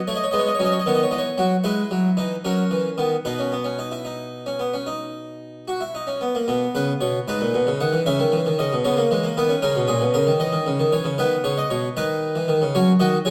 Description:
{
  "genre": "classical, baroque-style 3-part fugue for harpsichord",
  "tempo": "76 BPM (dotted quarters)",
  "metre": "12/8",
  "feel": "straight",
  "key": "B major",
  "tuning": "A4 = 439 Hz",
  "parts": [
    { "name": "harpsichord", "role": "solo", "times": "0.1-13.3 s", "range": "G#2 to F#5", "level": "-22 LUFS", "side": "equal", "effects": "none" }
  ],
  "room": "wet recital hall reverb, RT60 1.2 s",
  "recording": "none",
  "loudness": "-22 LUFS",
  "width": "mono",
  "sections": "0.0-6.5 A section; 6.5-13.3 B section",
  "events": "none",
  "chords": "0.1 B; 1.7 E; 2.4 F#; 3.2 B; 8.1 C#m7; 9.6 A#madd11; 11.2 B; 12.7 F#5"
}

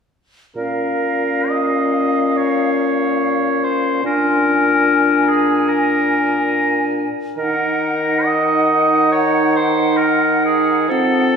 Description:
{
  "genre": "classical, slow romantic movement for symphony orchestra",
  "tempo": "70 BPM",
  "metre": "4/4",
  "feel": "uneven beats, rubato",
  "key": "Bb minor",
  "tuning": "A4 = 440 Hz",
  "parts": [
    { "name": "clear clarinet", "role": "second line", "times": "0.6-11.4 s", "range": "C4 to Eb4", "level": "-20 LUFS", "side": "left 2 dB", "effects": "none" },
    { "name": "flute section", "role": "second line", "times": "0.6-11.4 s", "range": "F5 to Ab5", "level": "-23 LUFS", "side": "equal", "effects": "none" },
    { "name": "warm oboe", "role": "second line", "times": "0.6-11.4 s", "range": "Ab4 to Eb5", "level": "-18 LUFS", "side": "equal", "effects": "none" },
    { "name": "mellow bassoon", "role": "accompaniment", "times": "0.6-11.4 s", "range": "Bb2 to F3", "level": "-21 LUFS", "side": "right 1 dB", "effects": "none" }
  ],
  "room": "wet concert hall reverb, RT60 2.3 s",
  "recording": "recorded in a church or concert hall",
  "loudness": "-14 LUFS",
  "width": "side -6 dB against mid",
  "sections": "0.6-11.4 A section",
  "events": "none",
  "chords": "0.6 Bbm; 7.4 Ebm"
}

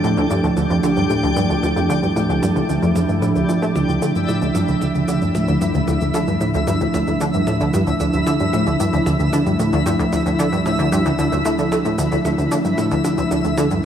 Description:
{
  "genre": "ambient, sequencer-driven space music",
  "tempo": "113 BPM",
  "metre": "4/4",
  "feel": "straight",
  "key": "D minor",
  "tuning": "A4 = 439 Hz",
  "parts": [
    { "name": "sweeping resonant pad", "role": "sustained chords", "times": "0.0-13.8 s", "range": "F3 to A4", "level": "-20 LUFS", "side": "right 1 dB", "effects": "chorus" },
    { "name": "plucky analog bass", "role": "riff", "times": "0.0-13.8 s", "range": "D2 to A3", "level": "-19 LUFS", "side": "equal", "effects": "lush chorus, tape echo" },
    { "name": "analog drone", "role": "bass", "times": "0.0-13.8 s", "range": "D2", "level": "-33 LUFS", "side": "equal", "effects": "none" },
    { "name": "percussion blips and shaker", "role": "percussion", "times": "0.0-13.8 s", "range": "none", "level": "-31 LUFS", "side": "right 2 dB", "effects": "tape echo" },
    { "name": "twinkling granular texture", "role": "texture", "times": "0.0-13.8 s", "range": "D4 to E5", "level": "-25 LUFS", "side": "left 2 dB", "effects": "built-in reverb" }
  ],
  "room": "wet huge ambient reverb, RT60 8.0 s",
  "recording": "none",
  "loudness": "-16 LUFS",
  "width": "side -9 dB against mid",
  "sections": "0.0-13.8 A section",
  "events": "fade-in on drum 0.0-13.8",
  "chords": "0.0 Dmadd9"
}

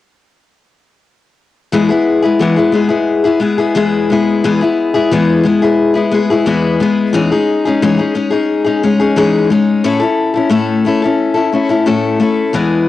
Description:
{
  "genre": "rock",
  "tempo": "89 BPM",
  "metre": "4/4",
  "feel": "straight",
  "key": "E major",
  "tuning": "A4 = 441 Hz",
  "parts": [
    { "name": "picked steel-string acoustic guitar", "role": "solo", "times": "1.7-12.9 s", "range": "E2 to A4", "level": "-11 LUFS", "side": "left 3 dB", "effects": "cassette tape" }
  ],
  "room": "moderate spring reverb, RT60 1.7 s, studio ambience",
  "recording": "home recording on cassette",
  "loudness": "-11 LUFS",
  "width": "side -14 dB against mid",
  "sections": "1.7-12.5 A section",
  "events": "none",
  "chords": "1.7 E; 7.1 C#madd9/E; 9.8 A"
}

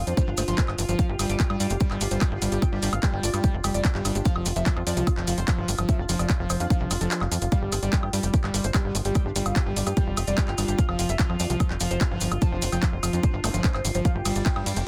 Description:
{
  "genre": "psychedelic trance",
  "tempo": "147 BPM",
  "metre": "4/4",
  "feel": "straight",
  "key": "unclear",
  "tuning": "A4 = 441 Hz",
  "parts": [
    { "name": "overdriven synth lead", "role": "melody", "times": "0.0-14.8 s", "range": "F4 to C6", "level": "-37 LUFS", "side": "equal", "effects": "phaser, sidechain pumping, tape echo" },
    { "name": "overtone-sweeping drone", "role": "sustained chords", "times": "0.0-14.9 s", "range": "F4", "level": "-39 LUFS", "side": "equal", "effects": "chorus, built-in reverb, sidechain pumping" },
    { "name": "tight sequencer bass", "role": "bass", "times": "0.0-14.8 s", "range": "F1 to G2", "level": "-30 LUFS", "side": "equal", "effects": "none" },
    { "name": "metallic wobble bass", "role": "second line", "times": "0.1-13.7 s", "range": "B3 to F4", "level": "-43 LUFS", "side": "equal", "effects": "none" },
    { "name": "techno drum kit", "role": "drums", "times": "0.1-14.8 s", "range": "handclaps, hi-hat, ride cymbal, woodblock", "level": "-34 LUFS", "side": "equal", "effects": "none" },
    { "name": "maracas", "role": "percussion", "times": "0.1-14.8 s", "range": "none", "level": "-37 LUFS", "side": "equal", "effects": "none" },
    { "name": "overdriven acid bass", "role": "riff", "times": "0.2-14.8 s", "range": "E3 to C4", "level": "-34 LUFS", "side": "equal", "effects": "distortion, sidechain pumping, tape echo" },
    { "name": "electronic kick drum", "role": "drums", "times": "0.2-14.5 s", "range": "none", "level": "-26 LUFS", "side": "equal", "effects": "none" },
    { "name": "zap", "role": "sound effects", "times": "13.4-13.5 s", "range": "none", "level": "-41 LUFS", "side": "equal", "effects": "none" }
  ],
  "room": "little or no reverb",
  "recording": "dense, heavily limited modern master",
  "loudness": "-25 LUFS",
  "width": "mono",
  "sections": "0.0-14.9 A section",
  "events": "kick drops out 7.1-7.5",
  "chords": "0.0 F5; 1.0 G7(no3)/F; 4.3 F5; 7.5 G7(no3)/F; 10.8 F5; 14.1 G7(no3)"
}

